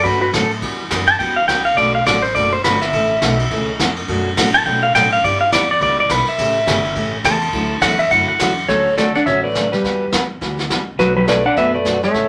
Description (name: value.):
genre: country, western swing.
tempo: 208 BPM.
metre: 4/4.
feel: swing 60% on 8ths.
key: D major.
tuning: A4 = 439 Hz.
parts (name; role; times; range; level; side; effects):
pedal steel guitar; second line; 0.0-8.7 s; F#4 to A5; -18 LUFS; equal; none.
picked steel-string acoustic guitar; accompaniment; 0.0-12.3 s; B2 to A4; -26 LUFS; equal; none.
upright bass; bass; 0.0-12.3 s; F#1 to B2; -28 LUFS; equal; none.
jazz brush drum kit; drums; 0.0-12.3 s; brushed snare drum, hi-hat, kick drum, ride cymbal, snare drum; -24 LUFS; equal; none.
clean lap steel guitar; melody; 8.7-12.3 s; F#4 to F#5; -19 LUFS; equal; none.
hollow-body jazz guitar; second line; 8.7-12.3 s; F#3 to D4; -23 LUFS; equal; none.
room: wet small room ambience, RT60 0.5 s.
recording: none.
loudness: -16 LUFS.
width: mono.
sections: 0.0-8.7 A section; 8.7-12.3 B section.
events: pedal steel guitar solo 0.0-8.7.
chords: 0.0 Dmaj7; 0.6 Emadd9; 1.8 Bm7; 2.9 A; 4.1 Bm7; 5.2 G6; 6.4 A7; 7.5 Dadd9; 8.7 Dmaj7; 9.8 Emadd9; 11.0 Bm7.